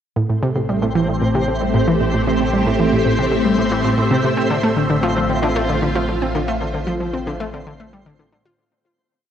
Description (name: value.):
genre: ambient, sequencer-driven space music.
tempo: 114 BPM.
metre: 4/4.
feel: straight.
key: A minor.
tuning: A4 = 440 Hz.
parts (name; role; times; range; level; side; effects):
phased string machine; sustained chords; 0.2-8.6 s; A2 to E5; -20 LUFS; equal; ensemble chorus, phaser.
analog pluck; riff; 0.2-8.5 s; A2 to F4; -20 LUFS; right 1 dB; chorus, analog delay.
round analog bass; bass; 0.2-8.6 s; A1; -28 LUFS; equal; none.
twinkling granular texture; texture; 0.7-8.6 s; C4 to C5; -26 LUFS; equal; built-in reverb.
room: wet plate reverb, RT60 2.7 s.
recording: worn, warbling old tape, cassette tape, warbly pitch drift.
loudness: -16 LUFS.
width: side -9 dB against mid.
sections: 0.2-8.6 A section.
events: fade-out 5.8-8.6.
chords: 0.2 Am7; 4.4 Dm7/A.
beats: | 0.16 0.69 1.22 1.74 | 2.27 2.79 3.32 3.85 | 4.37 4.90 5.43 5.95 | 6.48 7.00 7.53 8.06.